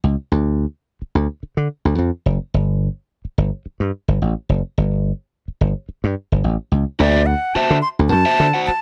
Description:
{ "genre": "funk", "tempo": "108 BPM", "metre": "4/4", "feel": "straight", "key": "D mixolydian", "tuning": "A4 = 439 Hz", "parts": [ { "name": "dry thumbed slap bass", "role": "bass", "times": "0.0-8.7 s", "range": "F#1 to D3", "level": "-19 LUFS", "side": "equal", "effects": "none" }, { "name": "breathy silver concert flute", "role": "melody", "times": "7.0-8.8 s", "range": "D5 to C6", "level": "-20 LUFS", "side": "equal", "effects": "none" }, { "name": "overdriven electric guitar", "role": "accompaniment", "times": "7.0-8.7 s", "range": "F#4 to F#5", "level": "-22 LUFS", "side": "equal", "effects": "none" } ], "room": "little or no reverb", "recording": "dry, close 1970s-style studio recording", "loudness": "-20 LUFS", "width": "mono", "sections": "0.0-7.0 A section; 7.0-8.8 B section", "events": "none", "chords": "0.0 N.C.; 7.0 D9", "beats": "| 0.30 0.86 1.42 1.98 | 2.53 3.09 3.65 4.21 | 4.77 5.33 5.88 6.44 | 7.00 7.55 8.11 8.67" }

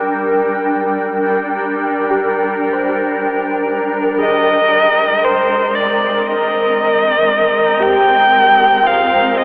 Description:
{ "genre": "ambient", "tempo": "58 BPM", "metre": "4/4", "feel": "straight", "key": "unclear", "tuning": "A4 = 439 Hz", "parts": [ { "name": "granular cloud pad", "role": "sustained chords", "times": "0.0-9.4 s", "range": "G3 to G5", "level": "-18 LUFS", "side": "equal", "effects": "built-in reverb" }, { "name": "soft round pluck", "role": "arpeggios", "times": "2.1-9.4 s", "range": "F4 to C5", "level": "-27 LUFS", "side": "equal", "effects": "analog chorus, tape echo" }, { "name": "dark electric violin", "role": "melody", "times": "4.2-9.4 s", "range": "C5 to G5", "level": "-14 LUFS", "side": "equal", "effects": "tape echo" } ], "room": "wet huge ambient reverb, RT60 8.7 s", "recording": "worn, warbling old tape, cassette tape, warbly pitch drift, telephone sound", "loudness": "-14 LUFS", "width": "mono", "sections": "0.0-9.4 A section", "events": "fade-in on synth pluck 0.0-9.4", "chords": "0.0 Gm; 4.2 Abmaj7", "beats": "| 0.04 1.07 2.11 3.14 | 4.17 5.21 6.24 7.28 | 8.31 9.35" }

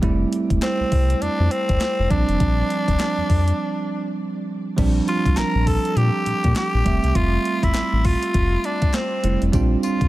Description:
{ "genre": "R&B, new jack swing", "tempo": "101 BPM", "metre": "4/4", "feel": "swing 60% on 16ths", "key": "unclear", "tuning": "A4 = 440 Hz", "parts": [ { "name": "bell-like tine electric piano", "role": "accompaniment", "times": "0.0-10.1 s", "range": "F3 to E5", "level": "-24 LUFS", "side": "right 4 dB", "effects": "shimmer reverb" }, { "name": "round analog bass", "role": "bass", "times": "0.0-10.1 s", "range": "E1 to Bb2", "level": "-20 LUFS", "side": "equal", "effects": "none" }, { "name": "clean 12-bit digital drum machine", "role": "drums", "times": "0.0-10.1 s", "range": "crash cymbal, handclaps, hi-hat, kick drum, snare drum, tambourine", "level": "-23 LUFS", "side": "equal", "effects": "overdrive" }, { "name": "raspy tenor saxophone", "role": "melody", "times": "0.6-10.1 s", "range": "C4 to Bb4", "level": "-24 LUFS", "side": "equal", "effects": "shimmer reverb" }, { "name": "group handclap", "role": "percussion", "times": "0.6-9.1 s", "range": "none", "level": "-40 LUFS", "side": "left 4 dB", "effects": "none" } ], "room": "light reverb", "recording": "none", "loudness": "-18 LUFS", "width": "side -16 dB against mid", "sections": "0.0-4.8 A section; 4.8-10.1 B section", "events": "break 3.6-4.8", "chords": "0.0 Fmaj7; 2.1 Bb6; 4.8 Bb69; 6.9 Fmaj9; 9.5 Bb69", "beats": "| 0.03 0.62 1.22 1.81 | 2.40 3.00 3.59 4.19 | 4.78 5.38 5.97 6.56 | 7.16 7.75 8.35 8.94 | 9.53" }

